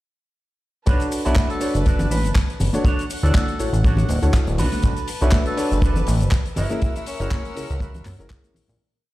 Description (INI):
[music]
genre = nu-disco, nu disco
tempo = 121 BPM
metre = 4/4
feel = swing 55% on 16ths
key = B dorian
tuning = A4 = 440 Hz
[part]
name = dark concert grand piano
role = accompaniment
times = 0.9-8.8 s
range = C#4 to C#5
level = -28 LUFS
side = left 1 dB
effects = sidechain pumping, ping-pong delay
[part]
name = rich chamber string section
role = sustained chords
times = 0.9-8.8 s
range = A#4 to E6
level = -35 LUFS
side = left 2 dB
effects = sidechain pumping
[part]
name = electric guitar with an envelope filter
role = riff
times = 0.9-8.7 s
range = D4 to E5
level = -31 LUFS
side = right 4 dB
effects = wide subtle chorus, ping-pong delay
[part]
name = chorused synth bass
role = bass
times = 0.9-8.8 s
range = D1 to F#2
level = -20 LUFS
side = equal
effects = none
[part]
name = damped 70s drum kit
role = drums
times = 0.9-8.8 s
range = handclaps, hi-hat, shaker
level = -32 LUFS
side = left 1 dB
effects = none
[part]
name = kick drum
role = drums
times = 0.9-8.4 s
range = none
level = -18 LUFS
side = equal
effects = none
[part]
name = breathy tenor saxophone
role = melody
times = 1.3-7.8 s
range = C#4 to B4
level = -32 LUFS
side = equal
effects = ping-pong delay
[part]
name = congas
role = percussion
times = 1.4-8.8 s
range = none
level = -29 LUFS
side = left 1 dB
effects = none
[sound]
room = small room reverb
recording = played on a big sound system in a bare room, stone room reverb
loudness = -18 LUFS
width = side -17 dB against mid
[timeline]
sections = 0.9-8.8 drop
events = drop 0.9-8.8; fade-out 6.2-8.8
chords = 0.9 Bm7; 2.9 Dmaj7; 4.6 Bm7; 6.6 F#7